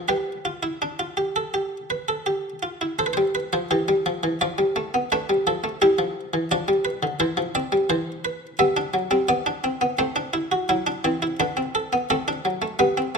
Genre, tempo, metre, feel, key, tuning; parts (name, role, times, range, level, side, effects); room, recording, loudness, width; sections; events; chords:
classical, baroque-style 3-part fugue for harpsichord; 85 BPM; 4/4; straight; C major; A4 = 439 Hz
buff-stop harpsichord; solo; 0.0-13.2 s; D3 to E5; -21 LUFS; equal
moderate recital hall reverb, RT60 1.4 s; close, detailed microphones; -21 LUFS; side -5 dB against mid
0.0-3.0 A section; 3.0-13.2 B section
0.1 G; 3.0 C; 4.4 Dm/F; 5.8 G7; 7.2 C/E; 8.6 G; 10.0 Am; 11.4 D7